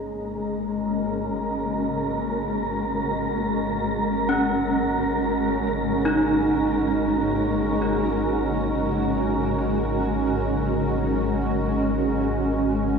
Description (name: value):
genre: dark ambient drone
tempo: free time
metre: none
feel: none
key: unclear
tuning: A4 = 440 Hz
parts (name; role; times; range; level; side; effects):
- granular cloud pad; sustained chords; 0.0-13.0 s; G#3 to A#4; -24 LUFS; equal; built-in reverb
- deep rumbling drone; drone; 0.0-13.0 s; G#1 to G#2; -31 LUFS; equal; built-in reverb
- wind-like tuned noise texture; texture; 0.0-13.0 s; A#3 to A#5; -30 LUFS; right 2 dB; built-in reverb
- gamelan-type bronze metallophone; arpeggios; 4.3-13.0 s; C#4 to D#4; -26 LUFS; right 2 dB; tape echo
room: wet cathedral reverb, RT60 5.7 s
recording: small room reverb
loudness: -21 LUFS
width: side -5 dB against mid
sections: 0.0-13.0 A section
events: fade-in on synth drone 0.0-13.0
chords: 0.0 G#sus2